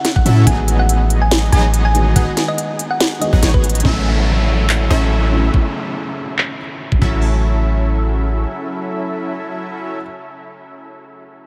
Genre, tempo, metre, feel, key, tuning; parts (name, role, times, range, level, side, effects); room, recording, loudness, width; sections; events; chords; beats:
future bass; 142 BPM; 4/4; swing 54% on 16ths, half-time; A lydian; A4 = 439 Hz
thumb-piano-like synth pluck; melody; 0.0-3.8 s; B4 to G#5; -26 LUFS; equal; chorus, sidechain pumping, analog delay
felt-muted upright piano; accompaniment; 0.0-11.5 s; C#3 to F#4; -28 LUFS; equal; analog chorus, sidechain pumping, analog delay
trap drum kit; drums; 0.0-7.1 s; crash cymbal, handclaps, hi-hat, snare drum; -24 LUFS; equal; low-pass filter on hats, low-pass filter on snare, low-pass filter on cymbals
electronic kick drum; drums; 0.2-7.1 s; -17 LUFS; equal
supersaw stab; riff; 0.3-10.0 s; F#3 to F#5; -26 LUFS; equal; subtle chorus, sidechain pumping, analog delay
long sustained 808-style bass; bass; 0.3-8.5 s; A1 to A2; -17 LUFS; equal; tube saturation, sidechain pumping
downlifter; sound effects; 3.8-7.2 s; -29 LUFS; equal
moderate huge ambient reverb, RT60 9.4 s; dreamy mix soaked in reverb; -16 LUFS; mono
0.0-3.8 A section; 3.8-7.2 B section; 7.2-10.6 C section
drop 0.0-3.8; drum fill 3.6; filter sweep on 808-style bass 3.8-7.2
0.5 G#m7/A; 3.8 A6
0.05 | 0.47 0.89 1.31 1.74 | 2.16 2.58 3.00 3.43 | 3.85 4.27 4.69 5.12 | 5.54 5.96 6.38 6.81 | 7.23 7.65 8.07 8.50 | 8.92 9.34 9.76 10.19